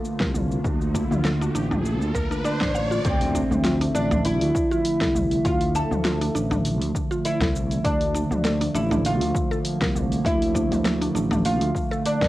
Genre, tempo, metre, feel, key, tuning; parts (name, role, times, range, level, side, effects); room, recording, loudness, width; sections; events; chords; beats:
organic downtempo; 100 BPM; 4/4; swing 55% on 16ths; D minor; A4 = 445 Hz
warbly tape-like pad; sustained chords; 0.0-12.3 s; D3 to E5; -27 LUFS; right 1 dB; chorus, built-in reverb, sidechain pumping, cassette tape, plate reverb
mallet-like synth pluck; arpeggios; 0.0-12.3 s; D4 to F5; -31 LUFS; equal; chorus, cassette tape, analog delay, plate reverb
riser and impact; sound effects; 0.3-5.4 s; -33 LUFS; equal
bronze singing bowl; texture; 0.0-3.1 s; barely audible
deep house drum kit; drums; 0.1-12.3 s; hi-hat, shaker, snare drum, toms; -28 LUFS; equal; overdrive, cassette tape
sustaining fretless electric bass; bass; 0.2-12.3 s; A1 to D2; -26 LUFS; equal; analog chorus, sidechain pumping
electronic kick drum; drums; 0.2-12.3 s; -28 LUFS; equal; overdrive, cassette tape
udu; percussion; 0.3-12.3 s; -32 LUFS; equal
oud; melody; 2.5-12.3 s; C4 to A4; -25 LUFS; equal; vintage 12-bit sampler grit, cassette tape, analog delay, plate reverb
moderate studio ambience, RT60 0.5 s; home recording on cassette; -20 LUFS; side -16 dB against mid
0.0-3.0 A section; 3.0-12.3 B section
riser 0.3-3.0; impact 3.0-5.4
0.0 Bbmaj7; 3.0 Dmadd9; 7.8 Bbmaj7
0.05 | 0.65 1.25 1.85 2.45 | 3.05 3.65 4.25 4.85 | 5.45 6.05 6.65 7.25 | 7.85 8.45 9.05 9.65 | 10.25 10.85 11.45 12.05